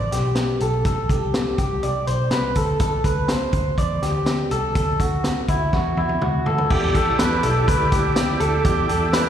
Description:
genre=jangly indie pop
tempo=123 BPM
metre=4/4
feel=straight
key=E minor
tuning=A4 = 440 Hz
part: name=electric guitar through a small old amp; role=arpeggios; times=0.0-9.3 s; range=E4 to D5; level=-22 LUFS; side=left 1 dB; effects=tube saturation, ping-pong delay, slapback echo
part: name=vintage muted picked electric bass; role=bass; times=0.0-9.3 s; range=B1 to E2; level=-24 LUFS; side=equal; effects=none
part: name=vintage drum kit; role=drums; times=0.1-9.2 s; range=crash cymbal, hi-hat, kick drum, snare drum, toms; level=-23 LUFS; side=equal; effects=none
part: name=combo organ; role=accompaniment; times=6.7-9.3 s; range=E4 to D5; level=-25 LUFS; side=right 6 dB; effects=slapback echo
room=light reverb, studio reverb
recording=live gig heard through the venue's PA, recital hall reverb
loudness=-18 LUFS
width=side -9 dB against mid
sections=0.0-6.7 A section; 6.7-9.3 B section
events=drum fill 5.7-6.7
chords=0.0 Csus2; 2.6 D; 6.7 Em7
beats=0.36 | 0.85 1.34 1.83 2.31 | 2.80 3.29 3.78 4.27 | 4.76 5.24 5.73 6.22 | 6.71 7.19 7.68 8.16 | 8.65 9.13

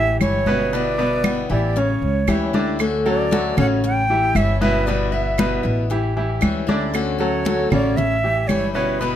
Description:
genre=latin, Cuban son and guajira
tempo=116 BPM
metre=4/4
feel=straight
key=unclear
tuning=A4 = 439 Hz
part: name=silver concert flute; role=melody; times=0.0-9.2 s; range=B4 to G5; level=-22 LUFS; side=right 2 dB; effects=none
part: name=bright grand piano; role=arpeggios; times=0.0-9.2 s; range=B2 to D5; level=-23 LUFS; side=equal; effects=slapback echo
part: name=upright bass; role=bass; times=0.0-9.2 s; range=G1 to D2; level=-24 LUFS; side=equal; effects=none
part: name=picked old ladder-braced acoustic guitar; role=accompaniment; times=0.2-9.2 s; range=D3 to F#4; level=-24 LUFS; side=left 4 dB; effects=none
part: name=claves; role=percussion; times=0.2-8.8 s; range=none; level=-28 LUFS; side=right 7 dB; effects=none
part: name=congas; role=percussion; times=0.2-9.2 s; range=none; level=-23 LUFS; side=left 1 dB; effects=none
room=light reverb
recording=close, detailed microphones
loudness=-17 LUFS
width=side -10 dB against mid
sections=0.0-2.8 A section; 2.8-9.2 B section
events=none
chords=0.0 A7; 0.7 G6; 1.8 A7; 2.8 Dmaj7; 3.8 A7; 4.9 G6; 5.9 A7; 6.9 Dmaj7; 8.0 A7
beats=0.21 | 0.72 1.24 1.76 2.28 | 2.80 3.32 3.83 4.35 | 4.87 5.39 5.91 6.42 | 6.94 7.46 7.98 8.49 | 9.01

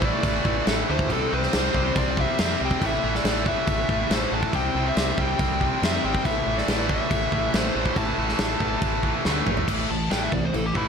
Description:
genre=hard rock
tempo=140 BPM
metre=4/4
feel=straight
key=A minor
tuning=A4 = 439 Hz
part: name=nasal lead guitar with a parked wah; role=melody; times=0.0-10.9 s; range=E4 to A5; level=-29 LUFS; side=left 1 dB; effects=overdrive, slapback echo
part: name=distorted electric guitar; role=riff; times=0.0-10.9 s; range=A2 to C4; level=-28 LUFS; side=left 13 dB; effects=overdrive
part: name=tight distorted guitar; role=riff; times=0.0-10.9 s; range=A2 to C4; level=-29 LUFS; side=right 14 dB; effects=distortion
part: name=growling fingered electric bass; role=bass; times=0.0-10.9 s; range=G#1 to F2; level=-29 LUFS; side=equal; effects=overdrive
part: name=big rock drum kit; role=drums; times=0.0-10.9 s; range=crash cymbal, kick drum, snare drum, toms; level=-25 LUFS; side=equal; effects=none
room=light reverb, studio reverb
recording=none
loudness=-21 LUFS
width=side -6 dB against mid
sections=0.0-9.7 A section; 9.7-10.9 B section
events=drum fill 9.3-9.7; lead electric guitar solo 9.7-10.9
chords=0.0 A5; 1.1 C; 2.8 A5; 4.5 C5; 6.3 Am; 8.0 A5; 9.7 Am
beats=0.24 0.67 | 1.10 1.53 1.96 2.39 | 2.82 3.25 3.68 4.11 | 4.54 4.96 5.39 5.82 | 6.25 6.68 7.11 7.54 | 7.97 8.40 8.82 9.25 | 9.68 10.11 10.54

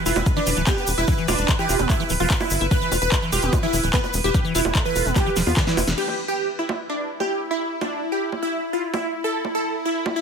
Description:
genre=psychedelic trance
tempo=147 BPM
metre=4/4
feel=straight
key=E phrygian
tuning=A4 = 441 Hz
part: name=evolving wavetable pad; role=sustained chords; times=0.0-10.2 s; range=E4 to B4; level=-29 LUFS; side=right 1 dB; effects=phaser, built-in reverb, sidechain pumping
part: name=liquid acid bass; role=riff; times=0.0-5.8 s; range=D3 to F4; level=-28 LUFS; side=moving between left 7 dB and right 6 dB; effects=phaser, auto-pan, sidechain pumping, dub echo
part: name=supersaw stab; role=melody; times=0.1-10.2 s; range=D4 to B4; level=-25 LUFS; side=right 1 dB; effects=phaser, sidechain pumping, dub echo
part: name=tight sequencer bass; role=bass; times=0.1-5.9 s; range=D1 to E2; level=-24 LUFS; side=equal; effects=none
part: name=big-room dance drum kit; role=drums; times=0.1-10.1 s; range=bongos, crash cymbal, handclaps, hi-hat, snare drum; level=-27 LUFS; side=right 2 dB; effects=studio reverb
part: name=tube shaker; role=percussion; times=0.1-6.0 s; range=none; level=-32 LUFS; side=left 2 dB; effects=none
part: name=electronic kick drum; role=drums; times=0.3-5.7 s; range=none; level=-22 LUFS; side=equal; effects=studio reverb
part: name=formant-sweep wobble bass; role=second line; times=0.8-5.2 s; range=A3 to E4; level=-39 LUFS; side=right 3 dB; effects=none
room=light reverb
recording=none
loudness=-19 LUFS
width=side -6 dB against mid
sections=0.0-6.0 A section; 6.0-10.2 B section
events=drop 0.0-6.0; drum fill 5.4-6.0; band accent 5.9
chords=0.0 E5; 6.0 N.C.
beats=0.26 0.67 | 1.08 1.49 1.90 2.30 | 2.71 3.12 3.53 3.94 | 4.34 4.75 5.16 5.57 | 5.98 6.38 6.79 7.20 | 7.61 8.02 8.43 8.83 | 9.24 9.65 10.06

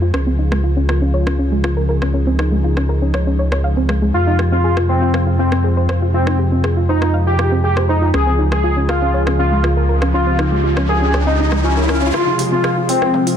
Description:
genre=melodic techno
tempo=120 BPM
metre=4/4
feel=straight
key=unclear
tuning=A4 = 441 Hz
part: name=warm analog pad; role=sustained chords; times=0.0-13.4 s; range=C3 to Ab4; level=-22 LUFS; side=left 1 dB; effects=lush chorus
part: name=soft round pluck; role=arpeggios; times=0.0-13.4 s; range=Ab3 to F5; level=-22 LUFS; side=equal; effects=chorus, vintage 12-bit sampler grit, digital delay
part: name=dark detuned saw bass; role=bass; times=0.0-13.1 s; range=Db2 to F2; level=-17 LUFS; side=equal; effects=tube saturation, high-pass filter
part: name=downlifter and riser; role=sound effects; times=0.0-0.1, 9.8-12.1 s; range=none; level=-24 LUFS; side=equal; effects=none
part: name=techno drum kit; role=drums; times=0.1-13.4 s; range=hi-hat, rim click, toms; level=-26 LUFS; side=equal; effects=overdrive, high-pass filter on hats, high-pass filter on snare, high-pass filter on toms
part: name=wide unison lead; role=melody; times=4.1-13.2 s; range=C4 to Ab4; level=-18 LUFS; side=left 1 dB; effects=lush chorus, digital delay
room=light reverb, digital ambience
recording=dense, heavily limited modern master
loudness=-14 LUFS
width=side -8 dB against mid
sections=0.0-12.1 A section; 12.1-13.4 B section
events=filter sweep on analog synth pad 0.0-12.1; riser 9.8-12.1; build-up 12.1-13.4; filter sweep 12.1-13.4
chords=0.1 Db; 4.1 Fm; 8.1 Db; 12.1 Fm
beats=| 0.14 0.64 1.14 1.64 | 2.14 2.64 3.14 3.64 | 4.14 4.64 5.14 5.64 | 6.14 6.64 7.14 7.64 | 8.14 8.64 9.14 9.64 | 10.14 10.64 11.14 11.64 | 12.14 12.64 13.14

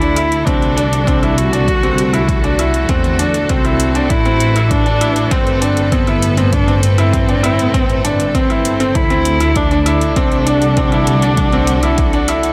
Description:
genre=piano and strings electronica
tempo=99 BPM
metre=4/4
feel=straight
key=unclear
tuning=A4 = 439 Hz
part: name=dark viola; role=melody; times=0.0-12.5 s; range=B3 to F#4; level=-21 LUFS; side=equal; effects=digital delay
part: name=rich studio string section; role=sustained chords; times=0.0-12.5 s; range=A2 to B4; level=-25 LUFS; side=equal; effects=none
part: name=bright upright piano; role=riff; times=0.0-12.5 s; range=C4 to E4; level=-20 LUFS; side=equal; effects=low-pass filter, digital delay
part: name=dark studio double bass section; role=bass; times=0.0-12.5 s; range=G1 to E2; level=-20 LUFS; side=equal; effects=tube saturation, sidechain pumping
part: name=electronic hi-hat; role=drums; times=0.0-12.5 s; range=none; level=-27 LUFS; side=equal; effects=overdrive
part: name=electronic kick drum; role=drums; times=0.5-12.1 s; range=none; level=-21 LUFS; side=equal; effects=overdrive
room=light reverb, studio ambience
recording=none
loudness=-14 LUFS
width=mono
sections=0.0-12.5 A section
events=none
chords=0.0 D7; 4.1 Amadd9; 9.0 D7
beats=0.47 1.07 | 1.68 2.29 2.89 3.50 | 4.10 4.71 5.32 5.92 | 6.53 7.13 7.74 8.35 | 8.95 9.56 10.16 10.77 | 11.38 11.98

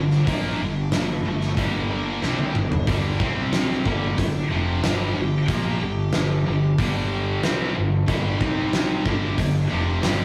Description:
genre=hard rock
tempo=92 BPM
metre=4/4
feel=straight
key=G minor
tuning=A4 = 439 Hz
part: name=smooth overdriven lead guitar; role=melody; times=0.0-10.2 s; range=A3 to G4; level=-34 LUFS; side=equal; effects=none
part: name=distorted electric guitar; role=riff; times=0.0-10.2 s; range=F2 to C4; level=-33 LUFS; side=equal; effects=none
part: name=high-gain distorted guitar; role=riff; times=0.0-10.2 s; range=F2 to C4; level=-31 LUFS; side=equal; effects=distortion
part: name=scooped high-gain guitar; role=riff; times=0.0-10.2 s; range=F2 to C4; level=-30 LUFS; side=equal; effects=none
part: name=fuzz fingered electric bass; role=bass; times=0.0-10.2 s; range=F1 to C2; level=-30 LUFS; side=equal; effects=overdrive
part: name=big rock drum kit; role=drums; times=0.1-10.2 s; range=hi-hat, kick drum, snare drum, toms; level=-27 LUFS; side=equal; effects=none
room=wet studio ambience, RT60 0.5 s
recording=rough rehearsal-room recording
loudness=-23 LUFS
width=mono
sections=0.0-10.2 A section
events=drum fill 2.2-2.9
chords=0.0 Gm; 3.2 C5; 3.9 Gm; 8.4 C5; 9.1 G5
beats=| 0.28 0.93 1.58 2.23 | 2.88 3.53 4.18 4.83 | 5.49 6.13 6.79 7.43 | 8.08 8.73 9.38 10.03

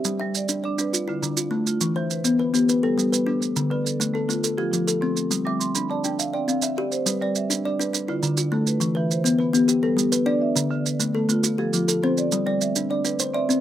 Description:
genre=southern african traditional, mbira-style interlocking cycle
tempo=137 BPM (dotted quarters)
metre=12/8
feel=straight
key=G mixolydian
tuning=A4 = 440 Hz
part: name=kalimba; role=arpeggios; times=0.0-13.6 s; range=D3 to E5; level=-22 LUFS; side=left 2 dB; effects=none
part: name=marimba with medium mallets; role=arpeggios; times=0.0-13.6 s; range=D3 to D6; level=-27 LUFS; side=right 5 dB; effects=none
part: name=maracas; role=percussion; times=0.0-13.6 s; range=none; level=-25 LUFS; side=right 7 dB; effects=none
room=light reverb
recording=recorded outdoors, with no room sound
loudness=-20 LUFS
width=side -11 dB against mid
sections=0.0-7.1 A section; 7.1-13.6 B section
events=marimba fill 5.3-7.1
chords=0.1 G; 0.9 Dm; 1.8 Em; 2.7 G; 3.6 Dm; 4.4 F; 5.3 G; 6.2 C; 7.1 G; 7.9 Dm; 8.8 Em; 9.7 G; 10.6 Dm; 11.4 F; 12.3 G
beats=| 0.06 0.50 0.93 1.37 | 1.81 2.25 2.69 3.12 | 3.56 4.00 4.43 4.87 | 5.31 5.75 6.19 6.62 | 7.06 7.50 7.94 8.37 | 8.81 9.25 9.69 10.12 | 10.56 11.00 11.44 11.88 | 12.32 12.76 13.19

